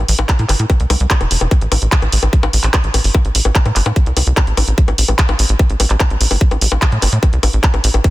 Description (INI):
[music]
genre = psychedelic trance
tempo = 147 BPM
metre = 4/4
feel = straight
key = A minor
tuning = A4 = 442 Hz
[part]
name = tight sequencer bass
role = bass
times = 0.0-8.0 s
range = E1 to A2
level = -14 LUFS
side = equal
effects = none
[part]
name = drum and bass drum kit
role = drums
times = 0.1-8.1 s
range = bongos, handclaps, hi-hat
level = -17 LUFS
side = left 1 dB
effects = none
[part]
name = electronic kick drum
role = drums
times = 0.3-8.1 s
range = none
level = -12 LUFS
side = equal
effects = none
[sound]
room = little or no reverb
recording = dense, heavily limited modern master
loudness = -12 LUFS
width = side -17 dB against mid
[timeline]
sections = 0.0-8.1 A section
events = none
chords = none